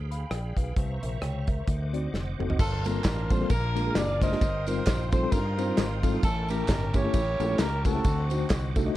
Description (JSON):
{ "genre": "uptempo gospel", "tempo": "132 BPM", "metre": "4/4", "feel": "swing 57% on 8ths", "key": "G minor", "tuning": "A4 = 441 Hz", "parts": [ { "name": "bright tonewheel organ", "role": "sustained chords", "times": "0.0-9.0 s", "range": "Ab4 to Eb6", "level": "-41 LUFS", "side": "right 2 dB", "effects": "fast rotary speaker, chorus vibrato" }, { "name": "fingered electric bass", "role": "bass", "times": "0.0-8.9 s", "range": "F1 to G2", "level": "-30 LUFS", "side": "equal", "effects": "none" }, { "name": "mellow tine electric piano", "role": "accompaniment", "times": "0.1-9.0 s", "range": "G2 to B5", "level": "-32 LUFS", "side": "left 2 dB", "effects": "medium stereo tremolo" }, { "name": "natural country drum kit", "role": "drums", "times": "0.1-8.8 s", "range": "crash cymbal, hi-hat, kick drum, ride cymbal, rim click, snare drum, toms", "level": "-28 LUFS", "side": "equal", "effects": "none" }, { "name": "warm horn section", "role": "melody", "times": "2.6-8.7 s", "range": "C4 to Eb5", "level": "-31 LUFS", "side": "equal", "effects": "none" }, { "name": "tambourine and handclaps", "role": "percussion", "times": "2.6-8.9 s", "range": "none", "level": "-42 LUFS", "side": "right 2 dB", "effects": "none" } ], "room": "small room ambience", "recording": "cassette tape", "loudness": "-24 LUFS", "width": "side -15 dB against mid", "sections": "0.0-2.6 A section; 2.6-9.0 B section", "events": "drum fill 2.1-2.6", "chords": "0.0 G7b9; 0.8 C7b9; 1.7 D7b9; 2.6 Gm11; 3.5 Bb7; 4.4 Eb69/G; 6.2 A7b9; 8.0 D7b9" }